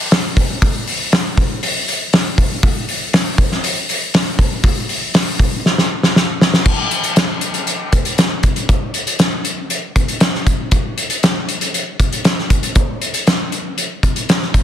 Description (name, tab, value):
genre	rock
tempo	118 BPM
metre	4/4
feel	straight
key	none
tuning	none
part	loose indie drum kit	drums	0.1-14.6 s	crash cymbal, hi-hat, kick drum, snare drum	-14 LUFS	equal	none
room	light reverb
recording	dense, heavily limited modern master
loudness	-14 LUFS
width	side -10 dB against mid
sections	0.0-6.7 A section; 6.7-14.6 B section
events	drum fill 5.7-6.7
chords	none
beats	0.12 | 0.62 1.12 1.63 2.13 | 2.63 3.13 3.64 4.14 | 4.64 5.15 5.65 6.16 | 6.66 7.17 7.67 8.18 | 8.69 9.20 9.71 10.21 | 10.72 11.23 11.74 12.25 | 12.76 13.27 13.78 14.28